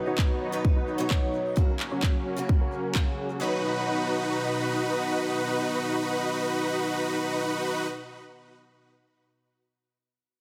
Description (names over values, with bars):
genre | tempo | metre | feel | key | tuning
EDM, festival progressive house | 130 BPM | 4/4 | straight | B major | A4 = 440 Hz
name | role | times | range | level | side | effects
picked acoustic archtop guitar | accompaniment | 0.0-8.2 s | B2 to C#5 | -37 LUFS | equal | sidechain pumping, digital delay
lush unison pad | sustained chords | 0.0-7.9 s | B2 to F#4 | -37 LUFS | equal | chorus, sidechain pumping
dense compressed supersaw | riff | 0.1-7.9 s | C#4 to C#5 | -31 LUFS | equal | sidechain pumping, low-pass filter, digital delay
electronic handclaps | drums | 0.2-3.0 s | none | -36 LUFS | equal | studio reverb
electronic kick drum | drums | 0.2-3.0 s | none | -26 LUFS | equal | studio reverb
room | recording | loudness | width
moderate lush hall reverb, RT60 1.6 s | none | -27 LUFS | mono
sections
0.0-3.4 A section; 3.4-7.1 B section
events
none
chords
0.0 B; 1.6 F#; 3.4 B